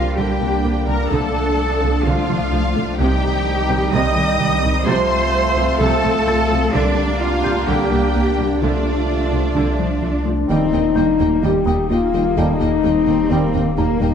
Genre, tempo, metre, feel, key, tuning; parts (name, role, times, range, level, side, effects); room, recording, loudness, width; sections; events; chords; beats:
cinematic, hybrid orchestral and electronic film score; 128 BPM; 4/4; straight; A4 = 440 Hz
warm symphonic violin section; melody; 0.0-14.1 s; D5 to Eb6; -29 LUFS; left 6 dB
clear symphonic violin section; second line; 0.0-14.1 s; D5 to Eb6; -30 LUFS; left 2 dB
rich symphonic viola section; accompaniment; 0.0-14.1 s; C3 to F4; -26 LUFS; right 2 dB
bright trombone section; sustained chords; 0.0-13.5 s; Bb2 to Bb3; -26 LUFS; right 5 dB
dark French horn section; sustained chords; 0.0-14.1 s; A3 to A4; -23 LUFS; left 5 dB
granular cloud pad; sustained chords; 0.0-14.1 s; F3 to F5; -25 LUFS; left 1 dB; built-in reverb
thumb-piano-like synth pluck; arpeggios; 0.0-14.1 s; C3 to G4; -26 LUFS; left 2 dB; chorus, digital delay
clear symphonic cello section; bass; 0.0-14.1 s; G3 to Eb5; -23 LUFS; right 2 dB
punchy sub bass; bass; 0.0-14.1 s; Eb1 to C2; -24 LUFS; equal
rich studio double bass section; bass; 0.0-14.1 s; C2 to Eb2; -24 LUFS; right 3 dB
felt-muted upright piano; texture; 0.0-14.1 s; G4 to Bb6; -34 LUFS; left 2 dB; digital delay
wet scoring stage reverb, RT60 1.5 s; dark, warm production; -15 LUFS; side -7 dB against mid
0.0-10.5 A section; 10.5-14.1 B section
0.0 Gm/C; 1.1 Dm/C; 3.0 Cm; 4.9 F/C; 6.7 Gm/C; 8.6 Dm/C; 10.5 Eb
0.18 0.65 | 1.12 1.59 2.06 2.53 | 3.00 3.46 3.93 4.40 | 4.87 5.34 5.81 6.28 | 6.75 7.21 7.68 8.15 | 8.62 9.09 9.56 10.03 | 10.49 10.96 11.43 11.90 | 12.37 12.84 13.31 13.78